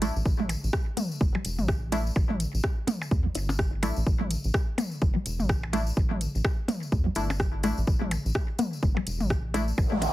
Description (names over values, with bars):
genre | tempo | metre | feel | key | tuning
minimal techno | 126 BPM | 4/4 | swing 59% on 16ths | unclear | A4 = 440 Hz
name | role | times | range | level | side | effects
resonant blip pluck | riff | 0.0-10.0 s | G3 to E4 | -32 LUFS | right 1 dB | chorus, sidechain pumping, digital delay
wavetable chord stab | stabs | 0.0-9.6 s | A3 to E4 | -35 LUFS | left 2 dB | digital delay
rubbery square bass | bass | 0.0-10.1 s | E1 to E2 | -30 LUFS | equal | sidechain pumping
house drum kit | drums | 0.0-10.1 s | hi-hat, rim click | -32 LUFS | equal | studio reverb
tambourine | percussion | 0.0-10.1 s | none | -42 LUFS | left 4 dB | none
electronic kick drum | drums | 0.3-9.9 s | none | -26 LUFS | equal | studio reverb
electronic toms and percussion blips | percussion | 0.4-10.1 s | none | -33 LUFS | left 1 dB | studio reverb, digital delay
noise sweep | sound effects | 9.9-10.1 s | none | -28 LUFS | right 4 dB | none
room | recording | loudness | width
light reverb | heavily compressed radio sound | -25 LUFS | side -16 dB against mid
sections
0.0-10.1 A section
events
noise sweep 9.9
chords
0.0 A5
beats
| 0.26 0.73 1.21 1.68 | 2.16 2.64 3.11 3.59 | 4.07 4.54 5.02 5.49 | 5.97 6.45 6.92 7.40 | 7.88 8.35 8.83 9.30 | 9.78